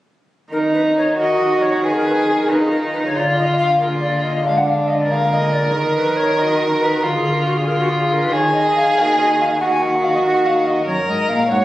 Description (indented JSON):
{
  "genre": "classical, baroque-style sonata movement with continuo",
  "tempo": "93 BPM (dotted quarters)",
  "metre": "12/8",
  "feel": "rubato",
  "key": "Eb minor",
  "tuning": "A4 = 439 Hz",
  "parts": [
    { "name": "bright tenor recorder", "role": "melody", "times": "0.5-11.6 s", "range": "Gb4 to Ab5", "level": "-20 LUFS", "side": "left 2 dB", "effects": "none" },
    { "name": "rich violin", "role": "second line", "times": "0.5-11.6 s", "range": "D4 to C#5", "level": "-18 LUFS", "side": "right 1 dB", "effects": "none" },
    { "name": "pipe organ, flutes", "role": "accompaniment", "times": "0.5-11.6 s", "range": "F#2 to Bb4", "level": "-26 LUFS", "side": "left 1 dB", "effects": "none" },
    { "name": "warm cello", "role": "bass", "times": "0.5-11.6 s", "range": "F#2 to Eb3", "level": "-22 LUFS", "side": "equal", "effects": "none" }
  ],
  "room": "wet recital hall reverb, RT60 1.4 s",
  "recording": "recorded on a phone in the room, club reverb, compression, lossy compression artefacts",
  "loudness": "-15 LUFS",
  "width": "side -15 dB against mid",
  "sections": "0.5-11.6 A section",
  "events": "none",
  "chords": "0.5 Ebm; 1.8 Db13/Eb (rootless); 3.2 Bb7/D; 5.7 Ebm; 7.0 Bb7/D; 8.3 Ebm; 10.9 F#"
}